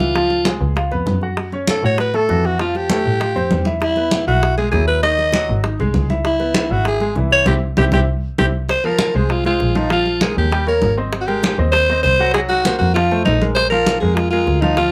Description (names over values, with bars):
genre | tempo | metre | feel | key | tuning
Afro-Cuban jazz | 197 BPM | 4/4 | straight | C# minor, F minor from 8.7 s | A4 = 439 Hz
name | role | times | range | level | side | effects
growling alto saxophone | melody | 0.0-14.9 s | Eb4 to D#5 | -20 LUFS | equal | none
clear grand piano | accompaniment | 0.0-14.9 s | D#3 to G5 | -25 LUFS | equal | none
rich double bass | bass | 0.0-14.9 s | G#1 to A2 | -22 LUFS | equal | none
bongos | percussion | 0.0-14.9 s | none | -29 LUFS | equal | none
congas | percussion | 0.0-14.9 s | none | -26 LUFS | equal | none
room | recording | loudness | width
light reverb | none | -17 LUFS | mono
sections
0.0-8.7 A section; 8.7-14.9 B section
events
band accent 7.5-8.7; drum fill 8.1-8.7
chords
0.2 C#7; 1.4 F#m7; 2.6 Fadd9; 3.8 Eadd9; 5.0 D#madd11; 5.6 G#; 6.3 C#m7; 7.5 C; 8.7 Fm; 9.9 Bb5; 10.5 Eb6; 11.1 Abmaj9; 12.3 Ab13/C (rootless); 13.0 F; 13.6 Bb5